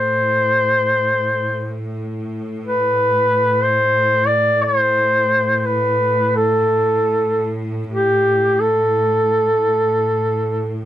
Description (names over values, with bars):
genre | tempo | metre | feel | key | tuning
caucasian folk, Caucasian lament | free time | none | none | A minor | A4 = 441 Hz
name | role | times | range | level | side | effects
warm duduk | melody | 0.0-10.8 s | G4 to D5 | -15 LUFS | equal | none
bright studio string section | drone | 0.0-10.9 s | A2 | -24 LUFS | equal | none
room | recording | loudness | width
light reverb | dry, close 1970s-style studio recording | -15 LUFS | side -12 dB against mid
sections
0.0-10.9 A section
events
slowing down 6.8-10.9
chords
none